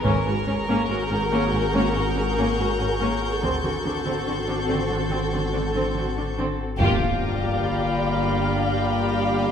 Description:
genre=cinematic, suspense film score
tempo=71 BPM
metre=4/4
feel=straight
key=unclear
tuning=A4 = 440 Hz
part: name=rich studio violin section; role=melody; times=0.0-9.5 s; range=G4 to A#4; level=-30 LUFS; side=left 1 dB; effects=none
part: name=warm studio viola section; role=accompaniment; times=0.0-9.5 s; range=A#3 to F#4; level=-28 LUFS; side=left 1 dB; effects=none
part: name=flickering grainy texture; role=sustained chords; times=0.0-9.5 s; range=C4 to F5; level=-28 LUFS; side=left 1 dB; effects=built-in reverb
part: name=warm studio cello section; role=bass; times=0.0-9.5 s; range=G2 to D3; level=-30 LUFS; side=right 2 dB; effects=none
part: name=warm studio double bass section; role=bass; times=0.0-9.5 s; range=G1 to D2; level=-30 LUFS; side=right 2 dB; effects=none
part: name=analog drone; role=drone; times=0.0-9.5 s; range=G1 to G#1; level=-29 LUFS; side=left 1 dB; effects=chorus
part: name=warm studio violin section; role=texture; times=0.0-9.5 s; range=Bb5 to G6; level=-33 LUFS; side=left 3 dB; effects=none
part: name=taiko ensemble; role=drums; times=0.1-1.7, 6.8-8.5 s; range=none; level=-33 LUFS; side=equal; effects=none
part: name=rich studio violin section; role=second line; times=6.8-9.5 s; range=F4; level=-28 LUFS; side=left 2 dB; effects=none
part: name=impact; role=sound effects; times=6.8-9.5 s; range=none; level=-31 LUFS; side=left 1 dB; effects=none
room=wet scoring stage reverb, RT60 1.9 s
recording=minimal, uncompressed stereo recording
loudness=-21 LUFS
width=side -8 dB against mid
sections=0.0-6.8 A section; 6.8-9.5 B section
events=band accent 6.8-7.6; impact 6.8-9.5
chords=0.0 F#add9/G#; 3.4 D7; 6.8 Gm7

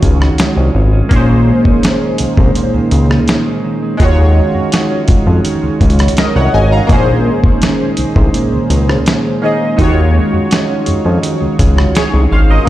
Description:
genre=contemporary R&B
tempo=83 BPM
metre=4/4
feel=straight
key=unclear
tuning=A4 = 443 Hz
part: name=warm analog keys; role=accompaniment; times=0.0-12.7 s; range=Ab3 to Bb5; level=-16 LUFS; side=left 1 dB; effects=chorus, phaser
part: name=mellow electric guitar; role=arpeggios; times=0.0-12.7 s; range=Bb2 to Gb4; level=-17 LUFS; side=right 3 dB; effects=tape echo
part: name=fat analog bass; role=bass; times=0.0-12.6 s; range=Ab1 to F2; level=-11 LUFS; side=equal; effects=none
part: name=dusty soul sampler-style drum kit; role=drums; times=0.0-12.1 s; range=hi-hat, kick drum, rim click, snare drum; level=-13 LUFS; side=equal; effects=none
room=little or no reverb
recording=played on a big sound system in a bare room, stone room reverb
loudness=-9 LUFS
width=side -14 dB against mid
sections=0.0-12.7 A section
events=none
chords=0.0 Ebm11; 1.1 Bbm11; 4.0 Ebm11; 6.9 Bbm11; 9.8 Ebm11

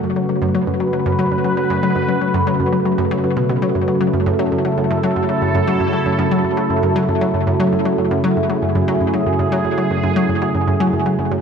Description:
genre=ambient, sequencer-driven space music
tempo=117 BPM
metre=4/4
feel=straight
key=F# minor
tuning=A4 = 441 Hz
part: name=sweeping resonant pad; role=sustained chords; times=0.0-11.4 s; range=C#3 to B4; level=-17 LUFS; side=right 1 dB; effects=chorus
part: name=analog pluck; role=riff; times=0.0-11.4 s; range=F#2 to F#3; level=-19 LUFS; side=left 1 dB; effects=chorus, tape echo
room=wet concert hall reverb, RT60 2.1 s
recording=cassette tape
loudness=-15 LUFS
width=side -6 dB against mid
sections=0.0-11.4 A section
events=none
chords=0.0 F#m

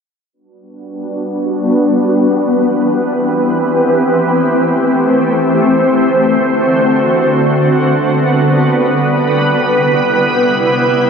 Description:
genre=hip hop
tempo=free time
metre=none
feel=none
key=G major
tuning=A4 = 440 Hz
part: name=shimmering ambient pad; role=sustained chords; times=1.0-11.1 s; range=C3 to C5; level=-10 LUFS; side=equal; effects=chorus, built-in reverb, low-pass filter
room=wet plate reverb, RT60 2.7 s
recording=dreamy mix soaked in reverb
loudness=-10 LUFS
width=side -6 dB against mid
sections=0.3-11.1 A section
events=filter sweep on ambient pad 0.3-11.1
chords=0.3 Gmaj7; 2.1 Cmaj7; 3.9 Am7; 5.7 D7; 7.6 Gmaj7; 9.4 Cmaj7

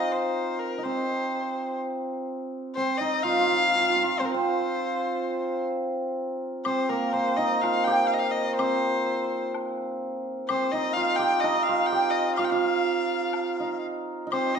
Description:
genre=chinese traditional, Chinese chamber ensemble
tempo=63 BPM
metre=2/4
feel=rubato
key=C yu mode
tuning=A4 = 442 Hz
part: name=rich erhu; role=melody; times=0.0-14.6 s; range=Bb4 to G5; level=-27 LUFS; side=left 4 dB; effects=none
part: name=hammered dulcimer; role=second line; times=0.0-14.6 s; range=Bb3 to G4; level=-26 LUFS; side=right 2 dB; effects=none
part: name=woodblock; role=percussion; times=6.6-14.6 s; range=none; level=-35 LUFS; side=left 5 dB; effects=none
room=wet recital hall reverb, RT60 1.5 s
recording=minimal, uncompressed stereo recording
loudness=-24 LUFS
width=side -6 dB against mid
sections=0.0-6.7 A section; 6.7-14.6 B section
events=none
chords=none

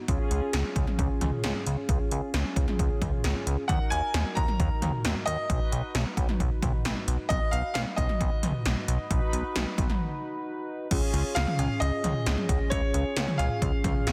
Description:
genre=synth-pop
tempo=133 BPM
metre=4/4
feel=straight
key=Db mixolydian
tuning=A4 = 440 Hz
part: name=mellow synth brass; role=accompaniment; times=0.0-14.1 s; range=Db4 to Cb5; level=-37 LUFS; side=equal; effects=chorus
part: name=chorused synth bass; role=bass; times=0.1-14.1 s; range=Cb2 to Eb2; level=-31 LUFS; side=equal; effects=none
part: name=80s electronic pad drums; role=drums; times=0.1-14.1 s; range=cowbell, crash cymbal, hi-hat, kick drum, snare drum, toms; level=-30 LUFS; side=equal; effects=gated reverb on snare and toms
part: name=clear concert grand piano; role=melody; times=3.7-14.1 s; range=Db5 to Bb5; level=-35 LUFS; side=equal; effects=tape echo
room=light reverb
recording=dense, heavily limited modern master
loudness=-28 LUFS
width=mono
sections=0.0-10.9 A section; 10.9-14.1 B section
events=break 10.0-10.9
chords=0.1 Db; 3.7 Ebm; 5.5 Cb; 10.9 Db

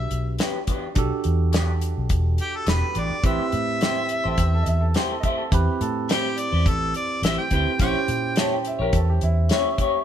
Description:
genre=straight-eighth soul blues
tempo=105 BPM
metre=4/4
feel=straight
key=unclear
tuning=A4 = 439 Hz
part: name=clear harmonica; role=melody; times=0.0-8.4 s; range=G4 to G5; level=-27 LUFS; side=equal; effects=overdrive
part: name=bell-like tine electric piano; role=accompaniment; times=0.0-10.0 s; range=C4 to C5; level=-30 LUFS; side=right 7 dB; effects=phaser
part: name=vintage muted fingered electric bass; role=bass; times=0.0-9.5 s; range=E1 to A#2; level=-23 LUFS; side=equal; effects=none
part: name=damped 70s drum kit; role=drums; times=0.1-9.9 s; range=hi-hat, kick drum, snare drum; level=-24 LUFS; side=left 1 dB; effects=none
part: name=electric guitar through a small old amp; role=stabs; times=0.4-10.0 s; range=E3 to C#5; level=-27 LUFS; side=left 4 dB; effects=phaser
part: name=clear upright piano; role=second line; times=4.1-10.0 s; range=C#4 to A5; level=-30 LUFS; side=right 2 dB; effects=none
room=light reverb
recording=band playing live in one room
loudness=-20 LUFS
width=side -10 dB against mid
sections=0.0-10.0 A section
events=none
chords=0.0 Em7; 3.2 Am7; 7.8 A#dim7

